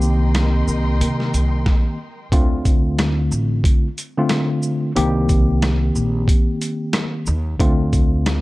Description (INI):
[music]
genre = hip hop, boom-bap hip-hop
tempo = 91 BPM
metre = 4/4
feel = swing 63% on 16ths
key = D phrygian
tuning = A4 = 440 Hz
[part]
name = mellow tine electric piano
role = accompaniment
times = 0.0-8.4 s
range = D3 to G4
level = -20 LUFS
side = left 1 dB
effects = medium stereo tremolo, cassette tape, high-pass filter, low-pass filter
[part]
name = warm studio string section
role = sustained chords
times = 0.0-2.3 s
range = Bb4 to C6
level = -30 LUFS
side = left 1 dB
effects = high-pass filter, low-pass filter
[part]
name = upright bass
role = bass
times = 0.0-8.4 s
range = A1 to C3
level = -20 LUFS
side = equal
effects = none
[part]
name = boom bap sampler-style drum kit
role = drums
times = 0.0-8.4 s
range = hi-hat, kick drum, rim click, shaker, snare drum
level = -18 LUFS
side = equal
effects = none
[sound]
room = digital ambience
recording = dark, warm production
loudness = -16 LUFS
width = side -19 dB against mid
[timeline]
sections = 0.0-2.3 A section; 2.3-8.4 B section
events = stop 1.7-2.3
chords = 0.0 Cm7; 2.3 Dm7; 5.0 Cm7; 7.6 Dm7